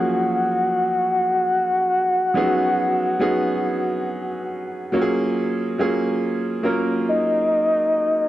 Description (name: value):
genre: R&B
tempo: 70 BPM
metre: 4/4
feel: swing 57% on 16ths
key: F# major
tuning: A4 = 439 Hz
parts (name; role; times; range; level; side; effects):
- soft octave-layered synth lead; melody; 0.0-8.3 s; D#5 to F#5; -20 LUFS; left 1 dB; chorus, tremolo
- bright upright piano; accompaniment; 0.0-8.3 s; E#3 to A#4; -22 LUFS; right 1 dB; none
room: moderate plate reverb, RT60 2.6 s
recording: none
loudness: -18 LUFS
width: side -14 dB against mid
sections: 0.0-5.8 A section; 5.8-8.3 A section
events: none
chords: 0.0 F#maj9; 2.3 C#9sus4; 4.9 F#maj9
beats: 0.63 1.49 | 2.35 3.20 4.06 4.92 | 5.78 6.63 7.49